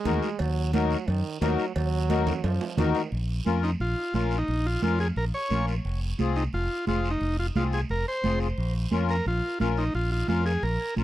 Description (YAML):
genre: latin, cumbia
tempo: 176 BPM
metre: 4/4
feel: straight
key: Bb minor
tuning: A4 = 439 Hz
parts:
  - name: bright trombone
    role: second line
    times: 0.0-3.1 s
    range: Eb3 to Ab3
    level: -32 LUFS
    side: right 7 dB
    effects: none
  - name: accordion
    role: accompaniment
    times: 0.1-11.0 s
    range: C4 to Bb4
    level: -29 LUFS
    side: left 9 dB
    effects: light tremolo tuning
  - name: fingered electric bass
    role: bass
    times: 0.1-11.0 s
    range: F1 to Gb2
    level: -27 LUFS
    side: equal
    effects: none
  - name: congas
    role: percussion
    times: 0.1-11.0 s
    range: none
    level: -31 LUFS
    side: right 4 dB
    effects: none
  - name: cowbell and timbales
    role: percussion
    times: 0.1-3.0 s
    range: none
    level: -38 LUFS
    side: right 5 dB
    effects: none
  - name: guiro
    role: percussion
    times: 0.1-11.0 s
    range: none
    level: -42 LUFS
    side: right 6 dB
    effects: none
  - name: combo organ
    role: melody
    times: 3.6-10.9 s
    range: Eb4 to Db5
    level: -30 LUFS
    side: equal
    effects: tape echo
room: little or no reverb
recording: dry, close 1970s-style studio recording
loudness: -24 LUFS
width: side -14 dB against mid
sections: 0.0-3.1 A section; 3.1-11.0 B section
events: drum fill 2.1-3.1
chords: 0.0 Ebm; 3.1 Bbm; 5.8 Fm; 8.6 Bbm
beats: 0.05 | 0.40 0.74 1.08 1.42 | 1.76 2.10 2.44 2.78 | 3.12 3.46 3.80 4.14 | 4.49 4.83 5.17 5.51 | 5.85 6.19 6.53 6.87 | 7.21 7.55 7.90 8.24 | 8.58 8.92 9.26 9.60 | 9.94 10.29 10.63 10.97